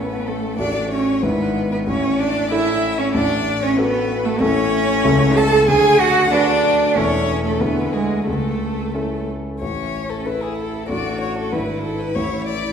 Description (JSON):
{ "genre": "quick classical-period movement for piano trio", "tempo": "94 BPM", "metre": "2/4", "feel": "straight", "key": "A major", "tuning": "A4 = 439 Hz", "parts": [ { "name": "warm violin", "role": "melody", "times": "0.0-12.7 s", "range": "G#4 to A5", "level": "-24 LUFS", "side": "left 6 dB", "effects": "none" }, { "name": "warm cello", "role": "second line", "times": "0.0-12.7 s", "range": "G#3 to A4", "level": "-19 LUFS", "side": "right 3 dB", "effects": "none" }, { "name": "warm concert grand piano", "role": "accompaniment", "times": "0.0-12.7 s", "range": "E1 to B4", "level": "-22 LUFS", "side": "left 2 dB", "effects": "none" } ], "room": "wet recital hall reverb, RT60 1.7 s", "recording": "heard from further back in the room", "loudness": "-16 LUFS", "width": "side -7 dB against mid", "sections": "0.0-9.6 A section; 9.6-12.7 A section", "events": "none", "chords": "0.0 A; 0.6 D/A; 1.2 E7/G#; 1.9 A; 3.1 Bm9/A; 4.4 A; 5.0 A/C#; 5.7 Bm7/D; 7.0 A/E; 7.6 E7/D; 8.3 A/C#; 9.6 A; 10.9 D/A; 11.5 E7/G#; 12.2 A" }